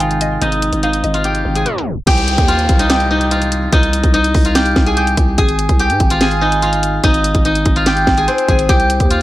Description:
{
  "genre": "hip hop, trap",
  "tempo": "145 BPM",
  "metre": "4/4",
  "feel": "half-time",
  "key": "C minor",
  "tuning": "A4 = 439 Hz",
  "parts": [
    { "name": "steel-string zither", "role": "melody", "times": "0.0-9.2 s", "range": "C4 to Ab5", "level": "-15 LUFS", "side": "left 1 dB", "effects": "low-pass filter, digital delay" },
    { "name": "mallet-like synth pluck", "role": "second line", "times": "0.0-2.0 s", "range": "Eb5 to G5", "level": "-25 LUFS", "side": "left 2 dB", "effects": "chorus, digital delay" },
    { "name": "warm analog pad", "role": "sustained chords", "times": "0.0-2.0 s", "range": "C3 to Eb4", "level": "-27 LUFS", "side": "right 2 dB", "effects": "lush chorus, low-pass filter" },
    { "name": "growling 808-style bass", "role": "bass", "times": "0.0-9.2 s", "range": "Ab1 to Ab2", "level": "-18 LUFS", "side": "equal", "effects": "none" },
    { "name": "trap drum kit", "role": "drums", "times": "0.0-9.2 s", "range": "crash cymbal, hi-hat, kick drum, snare drum", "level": "-15 LUFS", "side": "equal", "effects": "none" },
    { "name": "swell and downlifter", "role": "sound effects", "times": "1.0-5.4 s", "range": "none", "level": "-28 LUFS", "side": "equal", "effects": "none" }
  ],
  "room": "little or no reverb",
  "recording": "tape stop",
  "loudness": "-12 LUFS",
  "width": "side -16 dB against mid",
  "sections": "0.0-2.1 A section; 2.1-9.2 B section",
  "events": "tape stop 1.7-2.1",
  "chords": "0.0 Ab; 2.1 Cm; 5.4 Ab; 8.7 Cm"
}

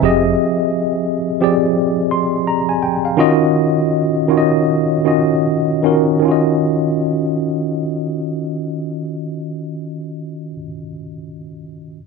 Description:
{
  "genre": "R&B",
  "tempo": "74-87 BPM",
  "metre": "4/4",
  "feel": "swing 62% on 16ths",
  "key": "Eb dorian",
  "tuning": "A4 = 441 Hz",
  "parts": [
    { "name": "tine electric piano", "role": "accompaniment", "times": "0.0-12.0 s", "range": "Eb3 to C6", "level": "-15 LUFS", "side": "equal", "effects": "medium stereo tremolo" }
  ],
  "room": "light reverb, small room ambience",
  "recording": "1960s-style stereo",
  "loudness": "-14 LUFS",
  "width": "side -4 dB against mid",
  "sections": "0.0-6.2 A section; 6.2-9.5 B section",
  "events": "slowing down 0.4-6.2",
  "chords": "0.0 Fm9; 3.2 Ebm9"
}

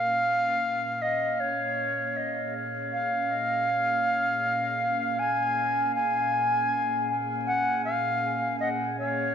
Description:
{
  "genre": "ambient",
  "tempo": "79 BPM",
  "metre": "4/4",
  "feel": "straight",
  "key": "Bb minor",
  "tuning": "A4 = 440 Hz",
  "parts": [
    { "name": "reedy silver concert flute", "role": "melody", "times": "0.0-9.3 s", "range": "Db5 to Ab5", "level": "-25 LUFS", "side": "equal", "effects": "dub echo" },
    { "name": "airy breathy pad", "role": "sustained chords", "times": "0.0-9.3 s", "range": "Bb2 to Bb4", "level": "-36 LUFS", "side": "equal", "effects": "chorus" }
  ],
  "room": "moderate plate reverb, RT60 3.3 s",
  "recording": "echo-heavy mix, vinyl crackle, nothing above 7.5 kHz",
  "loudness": "-24 LUFS",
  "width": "side -8 dB against mid",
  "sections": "0.0-9.3 A section",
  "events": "none",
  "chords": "0.0 Bbm7"
}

